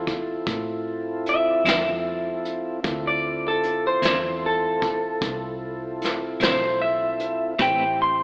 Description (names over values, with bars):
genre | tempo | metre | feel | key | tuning
slow blues | 50 BPM (dotted quarters) | 12/8 | straight | unclear | A4 = 440 Hz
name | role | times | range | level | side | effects
electric guitar through a small old amp | melody | 0.0-8.2 s | A4 to C6 | -25 LUFS | equal | slapback echo
tonewheel organ | sustained chords | 0.0-8.2 s | C4 to C5 | -31 LUFS | equal | slow rotary speaker
vintage muted fingered electric bass | bass | 0.0-8.2 s | A1 to A2 | -41 LUFS | equal | none
vintage brush drum kit | drums | 0.1-7.8 s | hi-hat, kick drum, snare drum | -29 LUFS | equal | none
clean electric guitar | accompaniment | 1.7-7.8 s | D3 to B4 | -30 LUFS | equal | tremolo, slapback echo
room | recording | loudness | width
wet lush hall reverb, RT60 2.7 s | big arena sound, AM radio sound | -24 LUFS | mono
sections
0.0-8.2 A section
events
none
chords
0.0 Dm9; 7.6 Am9